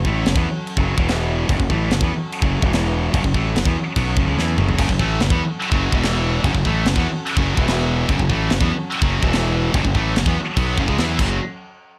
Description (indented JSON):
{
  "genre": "heavy metal",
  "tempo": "145 BPM",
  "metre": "4/4",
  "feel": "straight",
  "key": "F# minor",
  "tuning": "A4 = 437 Hz",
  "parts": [
    { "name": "bright chamber string section", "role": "sustained chords", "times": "0.0-11.4 s", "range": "E3 to E5", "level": "-34 LUFS", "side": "equal", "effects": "none" },
    { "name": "high-gain distorted guitar", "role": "riff", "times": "0.0-11.4 s", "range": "E2 to E4", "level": "-26 LUFS", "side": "equal", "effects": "distortion" },
    { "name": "fuzz fingered electric bass", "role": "bass", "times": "0.0-11.4 s", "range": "E1 to E2", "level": "-24 LUFS", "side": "equal", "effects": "overdrive" },
    { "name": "tight metal drum kit", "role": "drums", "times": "0.0-11.3 s", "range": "crash cymbal, kick drum, snare drum, toms", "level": "-24 LUFS", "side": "equal", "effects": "none" },
    { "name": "heavy high-gain guitar", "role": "riff", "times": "4.8-11.4 s", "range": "E2 to E4", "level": "-27 LUFS", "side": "equal", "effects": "distortion" }
  ],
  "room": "little or no reverb",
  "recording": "dark, warm production",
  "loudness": "-19 LUFS",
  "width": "mono",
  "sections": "0.0-11.4 A section",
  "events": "drum fill 4.4-4.8, 11.2",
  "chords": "0.0 F#m; 1.0 E5; 1.5 F#m; 2.6 E5; 3.1 F#m; 5.9 E5; 6.4 F#m; 7.6 E5; 8.1 F#m; 9.2 E5; 9.7 F#m; 11.4 N.C."
}